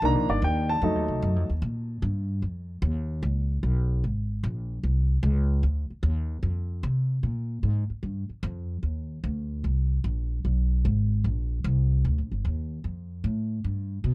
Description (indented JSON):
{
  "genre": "jazz, big band swing",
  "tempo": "150 BPM",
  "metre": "4/4",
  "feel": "swing 67% on 8ths",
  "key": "Bb major",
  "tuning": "A4 = 440 Hz",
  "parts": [
    { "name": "warm baby grand piano", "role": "accompaniment", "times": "0.0-1.5 s", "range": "Eb3 to Bb5", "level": "-25 LUFS", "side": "equal", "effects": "none" },
    { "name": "upright bass", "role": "bass", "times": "0.0-14.1 s", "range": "G1 to C3", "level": "-25 LUFS", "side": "equal", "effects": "none" }
  ],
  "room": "studio reverb",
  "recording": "dry, close 1970s-style studio recording",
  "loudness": "-25 LUFS",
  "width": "side -21 dB against mid",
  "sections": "0.0-1.6 A section; 1.6-14.1 B section",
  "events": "grand piano solo 0.0-1.6",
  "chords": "0.0 Cm7; 0.8 F7b9; 1.6 Bb5; 3.2 Db5; 4.8 Cmadd9; 6.4 F5; 7.2 Absus2; 8.0 Eb; 9.6 Bbsus2; 10.4 Abm; 11.3 Bbsus2",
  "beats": "| 0.02 0.42 0.82 1.22 | 1.62 2.02 2.42 2.83 | 3.23 3.63 4.03 4.43 | 4.83 5.23 5.63 6.04 | 6.44 6.84 7.24 7.64 | 8.04 8.44 8.85 9.25 | 9.65 10.05 10.45 10.85 | 11.25 11.65 12.05 12.46 | 12.86 13.26 13.66 14.06"
}